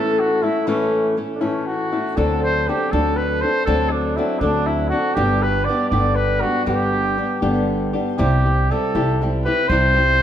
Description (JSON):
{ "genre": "mexican folk, mariachi", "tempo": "80 BPM (dotted quarters)", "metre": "6/8", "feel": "straight", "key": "G major", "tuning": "A4 = 440 Hz", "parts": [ { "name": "mellow trumpet", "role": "melody", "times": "0.0-10.2 s", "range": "C#4 to D5", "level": "-21 LUFS", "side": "right 1 dB", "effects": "none" }, { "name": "flamenco guitar", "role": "accompaniment", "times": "0.0-10.2 s", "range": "G2 to A4", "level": "-20 LUFS", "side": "left 2 dB", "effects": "none" }, { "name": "upright bass", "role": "bass", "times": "2.2-10.2 s", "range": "G1 to D2", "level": "-22 LUFS", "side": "right 1 dB", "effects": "none" } ], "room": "wet recital hall reverb, RT60 1.7 s", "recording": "none", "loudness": "-17 LUFS", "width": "side -10 dB against mid", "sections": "0.0-8.2 A section; 8.2-10.2 B section", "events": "none", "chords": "0.0 A; 2.2 D7; 5.2 G; 8.2 C" }